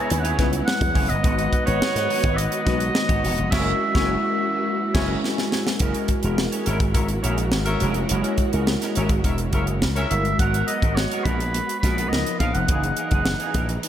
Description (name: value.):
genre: polished 1980s jazz-funk pop.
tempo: 105 BPM.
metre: 4/4.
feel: straight.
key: unclear.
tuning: A4 = 440 Hz.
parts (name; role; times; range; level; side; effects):
clear oboe; melody; 0.0-5.2, 10.1-13.7 s; B4 to A#5; -25 LUFS; right 1 dB; slapback echo.
mellow horn section; second line; 0.0-10.1 s; A#4 to G#5; -32 LUFS; left 3 dB; slapback echo, digital delay.
mellow tine electric piano; accompaniment; 0.0-13.9 s; E3 to G#5; -27 LUFS; left 2 dB; medium stereo tremolo, analog chorus, slapback echo.
warm studio string section; sustained chords; 0.0-13.9 s; C#3 to F#4; -34 LUFS; right 1 dB; none.
clean electric guitar; riff; 0.0-13.9 s; E3 to C#5; -32 LUFS; right 4 dB; ensemble chorus, slapback echo.
slap bass with an envelope filter; bass; 0.1-13.8 s; E1 to G#2; -24 LUFS; equal; none.
tight funk drum kit; drums; 0.1-13.9 s; crash cymbal, hi-hat, kick drum, snare drum; -24 LUFS; equal; none.
room: moderate lush hall reverb, RT60 2.3 s.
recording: big arena sound.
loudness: -19 LUFS.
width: side -10 dB against mid.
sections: 0.0-5.8 A section; 5.8-10.4 B section; 10.4-13.9 C section.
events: band accent 3.5-5.8; tine electric piano fill 4.7-5.8; drum fill 5.2-5.8.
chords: 0.0 E6; 1.2 G#m7; 3.5 F#9; 10.4 G#m9; 12.1 C#13; 12.7 F#13.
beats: 0.10 0.67 | 1.24 1.81 2.38 2.95 | 3.52 4.09 4.66 5.24 | 5.81 6.38 6.95 7.52 | 8.10 8.67 9.24 9.82 | 10.39 10.96 11.54 12.11 | 12.69 13.26 13.83.